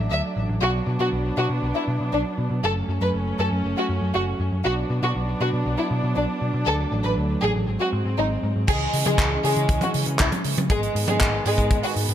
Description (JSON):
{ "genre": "italo disco", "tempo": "119 BPM", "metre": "4/4", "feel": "straight", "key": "B minor, C# minor from 8.7 s", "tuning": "A4 = 441 Hz", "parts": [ { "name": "warm chamber string section", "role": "sustained chords", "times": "0.0-12.1 s", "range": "D#3 to D4", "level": "-28 LUFS", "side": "right 1 dB", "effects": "none" }, { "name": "hollow-body short-scale picked electric bass", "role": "bass", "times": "0.0-12.1 s", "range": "F#1 to C#3", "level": "-25 LUFS", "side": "equal", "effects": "tube saturation" }, { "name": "dark studio violin section", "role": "melody", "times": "0.1-11.9 s", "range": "G#3 to E5", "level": "-25 LUFS", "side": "left 1 dB", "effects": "ping-pong delay" }, { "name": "kick drum", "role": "drums", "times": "8.7-11.8 s", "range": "none", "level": "-23 LUFS", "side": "equal", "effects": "none" }, { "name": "tight funk drum kit", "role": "drums", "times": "8.7-12.1 s", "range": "crash cymbal, handclaps, hi-hat, toms", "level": "-26 LUFS", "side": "right 1 dB", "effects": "low-pass filter on hats, low-pass filter on cymbals, low-pass filter on toms, low-pass filter on snare, low-pass filter on room, gated reverb" } ], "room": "moderate plate reverb, RT60 1.7 s, studio reverb", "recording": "none", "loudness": "-20 LUFS", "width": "side -10 dB against mid", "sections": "0.0-8.7 A section; 8.7-12.1 B section", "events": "none", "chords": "0.0 D; 0.6 Bm; 2.6 F#m; 4.7 Bm; 6.7 D; 7.7 G#7; 8.7 C#m; 10.7 G#m", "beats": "0.11 | 0.62 1.12 1.62 2.13 | 2.63 3.14 3.64 4.15 | 4.65 5.16 5.66 6.16 | 6.67 7.17 7.68 8.18 | 8.68 9.19 9.69 10.20 | 10.70 11.21 11.71" }